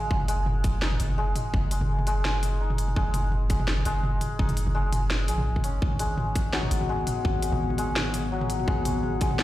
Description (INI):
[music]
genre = half-time drum and bass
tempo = 168 BPM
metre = 4/4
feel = swing 55% on 16ths, half-time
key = unclear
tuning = A4 = 441 Hz
[part]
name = santur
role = arpeggios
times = 0.0-9.4 s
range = F#3 to D#4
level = -31 LUFS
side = left 2 dB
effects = digital delay
[part]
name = long sustained 808-style bass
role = bass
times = 0.0-9.4 s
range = F#1 to A#1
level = -27 LUFS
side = equal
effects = none
[part]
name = electronic kick drum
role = drums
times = 0.1-9.3 s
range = none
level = -26 LUFS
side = equal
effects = small room ambience
[part]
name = drum and bass drum kit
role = drums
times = 0.2-9.4 s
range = hi-hat, snare drum, toms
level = -31 LUFS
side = equal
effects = small room ambience
[part]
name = dark analog pad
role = sustained chords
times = 6.7-9.4 s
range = B3 to D#5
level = -35 LUFS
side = left 2 dB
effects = chorus, phaser, sidechain pumping
[part]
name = metallic inharmonic drone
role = texture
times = 7.0-9.4 s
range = F#3 to F#4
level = -40 LUFS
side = right 4 dB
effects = chorus, built-in reverb
[sound]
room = digital ambience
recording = played on a big sound system in a bare room, large studio reverb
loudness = -24 LUFS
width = side -15 dB against mid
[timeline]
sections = 0.0-9.4 A section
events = none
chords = 0.1 F#; 5.8 G#m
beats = | 0.11 0.46 0.82 1.18 | 1.54 1.89 2.25 2.61 | 2.96 3.32 3.68 4.04 | 4.39 4.75 5.11 5.46 | 5.82 6.18 6.54 6.89 | 7.25 7.61 7.96 8.32 | 8.68 9.04 9.39